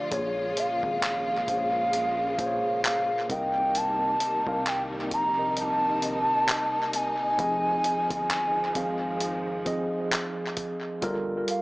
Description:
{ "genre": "contemporary R&B", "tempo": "66 BPM", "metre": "4/4", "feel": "swing 58% on 16ths", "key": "unclear", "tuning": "A4 = 440 Hz", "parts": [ { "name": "gliding portamento lead", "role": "melody", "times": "0.0-11.6 s", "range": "Db5 to Bb5", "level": "-26 LUFS", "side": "equal", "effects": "chorus, tape echo" }, { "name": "mellow tine electric piano", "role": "accompaniment", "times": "0.0-11.6 s", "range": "Bb2 to F5", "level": "-32 LUFS", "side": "right 1 dB", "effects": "medium stereo tremolo, tape echo" }, { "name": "warm studio string section", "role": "sustained chords", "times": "0.0-11.0 s", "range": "C3 to F4", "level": "-35 LUFS", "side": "left 1 dB", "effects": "none" }, { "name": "rubbery square bass", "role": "bass", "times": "0.1-11.4 s", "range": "F1 to C2", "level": "-41 LUFS", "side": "equal", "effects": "none" }, { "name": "dusty soul sampler-style drum kit", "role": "drums", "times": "0.1-11.6 s", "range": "handclaps, hi-hat, kick drum", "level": "-31 LUFS", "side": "equal", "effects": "tape echo" } ], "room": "moderate spring reverb, RT60 2.6 s", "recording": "echo-heavy mix, small speaker sound", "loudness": "-24 LUFS", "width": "side -22 dB against mid", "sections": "0.0-11.0 A section", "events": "none", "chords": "0.1 Bbm7; 3.3 Cm7; 7.4 Fm7; 11.0 Gm9", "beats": "| 0.11 1.02 1.93 2.84 | 3.75 4.66 5.57 6.48 | 7.39 8.30 9.21 10.11 | 11.02" }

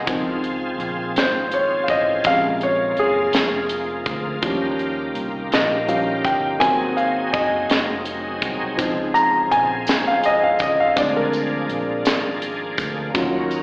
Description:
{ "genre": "slow gospel", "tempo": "55 BPM (dotted quarters)", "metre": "6/8", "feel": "straight", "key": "Db major", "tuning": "A4 = 439 Hz", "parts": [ { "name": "warm grand piano", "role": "accompaniment", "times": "0.0-13.6 s", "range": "C3 to Bb5", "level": "-19 LUFS", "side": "equal", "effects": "none" }, { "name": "bright tonewheel organ", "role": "sustained chords", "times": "0.0-13.6 s", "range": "Db3 to Ab4", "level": "-27 LUFS", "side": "equal", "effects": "overdrive, chorus vibrato, slow rotary speaker" }, { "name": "fingered electric bass", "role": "bass", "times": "0.0-13.6 s", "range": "F1 to Eb2", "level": "-32 LUFS", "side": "equal", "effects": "none" }, { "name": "tight funk drum kit", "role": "drums", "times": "0.1-13.6 s", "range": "hi-hat, kick drum, snare drum", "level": "-21 LUFS", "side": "equal", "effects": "none" }, { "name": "tambourine", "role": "percussion", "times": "8.8-13.6 s", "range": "none", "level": "-37 LUFS", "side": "equal", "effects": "slapback echo" } ], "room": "light reverb", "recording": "live gig heard through the venue's PA, recital hall reverb, AM radio sound", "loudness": "-18 LUFS", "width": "side -26 dB against mid", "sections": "0.1-13.6 A section", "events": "grand piano solo 0.1-13.6", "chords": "0.1 Dbmaj7; 2.2 Bbm7; 4.4 Eb7; 6.6 Ab7; 8.8 Dbmaj7; 11.0 Bb7", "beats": "| 0.07 1.16 | 2.25 3.34 | 4.43 5.52 | 6.61 7.70 | 8.79 9.88 | 10.96 12.05 | 13.14" }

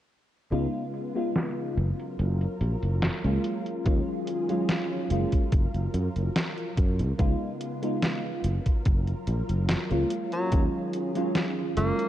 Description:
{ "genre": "vaporwave", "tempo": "72 BPM", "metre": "4/4", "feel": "straight", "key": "F# major", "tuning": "A4 = 436 Hz", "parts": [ { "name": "mellow FM electric piano", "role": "accompaniment", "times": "0.5-12.1 s", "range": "F#3 to E#4", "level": "-30 LUFS", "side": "equal", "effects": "lush chorus, cassette tape, tape echo" }, { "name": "soft string machine", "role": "sustained chords", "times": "0.5-12.1 s", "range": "C#3 to A#4", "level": "-35 LUFS", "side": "equal", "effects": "ensemble chorus" }, { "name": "sustaining fretless electric bass", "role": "bass", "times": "0.5-11.9 s", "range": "F#1 to F#2", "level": "-26 LUFS", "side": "equal", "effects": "tube saturation" }, { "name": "detuned 8-bit digital drum machine", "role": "drums", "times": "0.5-12.1 s", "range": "hi-hat, snare drum", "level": "-31 LUFS", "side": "equal", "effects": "low-pass filter on hats, low-pass filter on snare, low-pass filter on room" }, { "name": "electronic kick drum", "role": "drums", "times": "3.9-10.7 s", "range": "none", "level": "-24 LUFS", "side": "equal", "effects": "none" }, { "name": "warm tenor saxophone", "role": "melody", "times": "10.3-12.1 s", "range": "F#3 to A#3", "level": "-32 LUFS", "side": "equal", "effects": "tape echo" } ], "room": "light reverb, digital ambience", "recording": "dark, warm production, cassette tape", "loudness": "-25 LUFS", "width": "side -12 dB against mid", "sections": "0.5-7.2 A section; 7.2-12.1 B section", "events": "filter sweep on drum 0.5-7.2", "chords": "0.5 C#7; 1.8 F#maj7; 3.9 D#m11; 5.1 F#maj7; 7.2 C#7; 8.4 F#maj7; 10.5 D#m11", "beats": "| 0.53 1.36 2.19 3.03 | 3.86 4.69 5.53 6.36 | 7.19 8.03 8.86 9.69 | 10.53 11.36" }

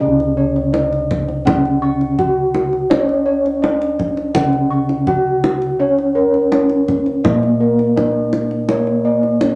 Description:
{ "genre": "Javanese gamelan", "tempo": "83 BPM", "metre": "4/4", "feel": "straight", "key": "unclear", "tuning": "A4 = 440 Hz", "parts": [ { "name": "gamelan-type bronze metallophone", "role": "melody", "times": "0.0-9.6 s", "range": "A#3+20c to C#5", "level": "-21 LUFS", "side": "equal", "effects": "none" }, { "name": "gamelan-type bronze metallophone", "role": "accompaniment", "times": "0.0-9.6 s", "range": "C#3 to C#4", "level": "-23 LUFS", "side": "equal", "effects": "none" }, { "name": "gamelan-type bossed gongs", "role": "arpeggios", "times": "0.0-9.6 s", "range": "A#4+20c to C#6", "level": "-22 LUFS", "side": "equal", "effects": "none" }, { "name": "gamelan-type bossed gongs", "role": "bass", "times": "0.0-9.6 s", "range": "C#2 to C#5", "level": "-29 LUFS", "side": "equal", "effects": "none" }, { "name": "kendang", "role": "percussion", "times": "0.2-9.6 s", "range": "none", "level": "-23 LUFS", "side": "equal", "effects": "none" } ], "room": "moderate studio reverb, RT60 0.5 s", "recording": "nothing above 10.8 kHz", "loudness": "-16 LUFS", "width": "mono", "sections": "0.0-9.6 A section", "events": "none", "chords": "none", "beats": "| 0.01 0.74 1.46 2.18 | 2.90 3.63 4.35 5.07 | 5.80 6.52 7.24 7.97 | 8.69 9.41" }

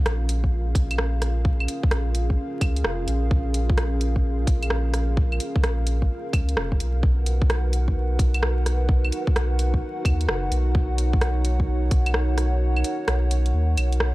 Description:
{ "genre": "future garage", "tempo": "129 BPM", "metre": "4/4", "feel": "swing 66% on 16ths", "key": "Bb phrygian", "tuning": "A4 = 440 Hz", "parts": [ { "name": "dark analog pad", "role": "sustained chords", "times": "0.0-14.1 s", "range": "Db4 to F#5", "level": "-30 LUFS", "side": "equal", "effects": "chorus, sidechain pumping" }, { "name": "warm sub bass", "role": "bass", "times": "0.1-14.1 s", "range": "F1 to D#2", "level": "-23 LUFS", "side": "equal", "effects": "tube saturation, sidechain pumping" }, { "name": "garage drum kit", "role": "drums", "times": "0.1-14.1 s", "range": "claves, hi-hat, rim click", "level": "-27 LUFS", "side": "equal", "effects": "studio reverb" }, { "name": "electronic kick drum", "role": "drums", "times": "0.4-12.0 s", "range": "none", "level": "-21 LUFS", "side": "equal", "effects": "studio reverb" } ], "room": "little or no reverb", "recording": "dry, gritty hardware recording, vinyl crackle", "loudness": "-20 LUFS", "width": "side -19 dB against mid", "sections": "0.0-14.1 A section", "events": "kick drops out 12.6-14.1", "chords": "0.0 Bbm7; 7.0 Bmaj7", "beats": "0.05 0.52 0.98 | 1.45 1.91 2.38 2.84 | 3.31 3.77 4.24 4.70 | 5.17 5.63 6.10 6.57 | 7.03 7.50 7.96 8.43 | 8.89 9.36 9.82 10.29 | 10.75 11.22 11.68 12.15 | 12.61 13.08 13.54 14.01" }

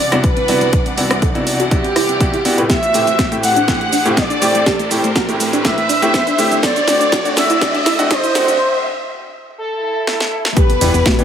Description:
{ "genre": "progressive house", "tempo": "122 BPM", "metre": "4/4", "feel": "straight", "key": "unclear", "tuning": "A4 = 442 Hz", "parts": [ { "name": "expressive synth lead", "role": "melody", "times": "0.0-11.2 s", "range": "G4 to F#5", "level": "-19 LUFS", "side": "equal", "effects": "lush chorus, sidechain pumping, tape echo" }, { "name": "warm symphonic violin section", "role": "second line", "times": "0.0-11.2 s", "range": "G4 to F#5", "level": "-22 LUFS", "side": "equal", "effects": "sidechain pumping, tape echo" }, { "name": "clear symphonic string section", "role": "sustained chords", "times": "0.0-11.2 s", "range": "C2 to F#5", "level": "-25 LUFS", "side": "left 1 dB", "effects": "sidechain pumping" }, { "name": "soft round pluck", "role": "arpeggios", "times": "0.0-11.2 s", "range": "G3 to B4", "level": "-22 LUFS", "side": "equal", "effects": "lush chorus, sidechain pumping, tape echo" }, { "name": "riser, swell and impact", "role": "sound effects", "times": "0.0-11.2 s", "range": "none", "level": "-24 LUFS", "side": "equal", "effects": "none" }, { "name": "bright baby grand piano", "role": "stabs", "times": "0.1-11.2 s", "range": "A2 to B4", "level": "-20 LUFS", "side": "equal", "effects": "sidechain pumping, low-pass filter, tape echo" }, { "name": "house drum kit", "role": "drums", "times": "0.1-11.2 s", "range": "hi-hat, ride cymbal, rim click, shaker, snare drum", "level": "-19 LUFS", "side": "equal", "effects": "none" }, { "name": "electronic kick drum", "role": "drums", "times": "0.2-11.2 s", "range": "none", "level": "-18 LUFS", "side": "equal", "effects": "none" }, { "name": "round analog bass", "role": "bass", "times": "10.8-11.0 s", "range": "E2", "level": "-16 LUFS", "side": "equal", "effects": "sidechain pumping" } ], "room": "moderate digital room reverb, RT60 1.2 s", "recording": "high-pass filter", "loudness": "-12 LUFS", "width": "side -8 dB against mid", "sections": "0.0-10.6 A section", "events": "build-up 0.0-10.6; riser 0.0-8.6; filter sweep on synth pluck 0.0-10.6; drum fill 2.7-8.6, 10.1-10.6; break 8.6-10.6; swell 9.6-10.6; impact 10.6-11.2", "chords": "0.0 Cmaj9#11; 2.7 Am7; 6.6 D7; 10.6 Em7", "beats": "0.24 | 0.73 1.22 1.71 2.21 | 2.70 3.19 3.68 4.17 | 4.66 5.16 5.65 6.14 | 6.63 7.12 7.62 8.11 | 8.60 9.09 9.58 10.07 | 10.57 11.06" }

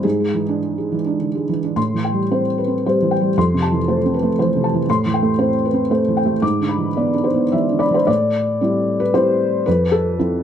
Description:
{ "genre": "neoclassical minimalist piano", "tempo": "102-120 BPM", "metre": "3/4", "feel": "rubato", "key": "A minor", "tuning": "A4 = 440 Hz", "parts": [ { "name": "felt-muted upright piano", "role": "solo", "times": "0.0-10.4 s", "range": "F2 to D6", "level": "-16 LUFS", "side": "equal", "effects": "none" } ], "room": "moderate studio ambience, RT60 0.5 s", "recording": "nothing above 10.7 kHz", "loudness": "-16 LUFS", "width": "side -9 dB against mid", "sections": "0.0-1.8 A section; 1.8-8.1 B section; 8.1-10.4 C section", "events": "none", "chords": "0.0 E7/G#; 1.8 Am7; 3.4 Fmaj7; 4.9 Am7; 6.4 E7/G#; 8.1 Am7; 9.7 Fmaj7", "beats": "| 0.04 0.63 1.20 | 1.76 2.30 2.83 | 3.36 3.86 4.37 | 4.87 5.38 5.89 | 6.42 6.97 7.52 | 8.07 8.61 9.14 | 9.66 10.18" }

